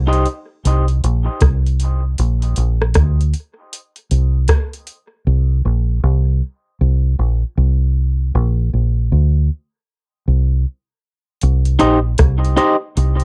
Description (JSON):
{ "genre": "dub reggae", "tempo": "78 BPM", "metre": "4/4", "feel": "swing 64% on 16ths", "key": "unclear", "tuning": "A4 = 440 Hz", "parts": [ { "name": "deep dub fingered electric bass", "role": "bass", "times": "0.0-13.2 s", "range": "Bb1 to D2", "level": "-17 LUFS", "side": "equal", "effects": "transformer saturation" }, { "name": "soft vintage rhythm box", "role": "drums", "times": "0.1-5.1, 11.4-13.2 s", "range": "hi-hat, kick drum, rim click", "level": "-20 LUFS", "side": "equal", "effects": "cassette tape" }, { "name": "electric guitar at the edge of break-up", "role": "accompaniment", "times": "11.8-12.8 s", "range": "Eb4 to Eb5", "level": "-19 LUFS", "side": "equal", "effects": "cassette tape, dub echo" } ], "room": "little or no reverb", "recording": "home recording on cassette", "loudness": "-17 LUFS", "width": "mono", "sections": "0.0-13.2 A section", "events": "break 0.0-11.4; part muted 5.3-11.4", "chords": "0.0 N.C.; 2.2 Bb; 5.3 Bbsus2; 8.3 Bb; 11.4 Cm" }